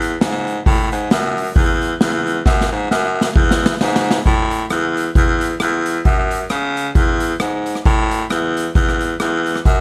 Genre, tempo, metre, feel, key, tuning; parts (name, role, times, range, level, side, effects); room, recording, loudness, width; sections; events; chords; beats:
ska; 133 BPM; 4/4; swing 57% on 8ths; A major; A4 = 442 Hz
raspy baritone saxophone; bass; 0.0-9.8 s; E2 to C#3; -20 LUFS; equal
street-band drum kit; drums; 0.0-9.8 s; hi-hat, kick drum, rim click, snare drum; -20 LUFS; equal
little or no reverb; vinyl crackle; -17 LUFS; mono
0.0-4.3 A section; 4.3-9.8 B section
drum fill 2.5-4.3
0.21 | 0.66 1.11 1.56 2.01 | 2.46 2.91 3.36 3.81 | 4.25 4.71 5.16 5.60 | 6.05 6.50 6.95 7.40 | 7.85 8.30 8.75 9.20 | 9.65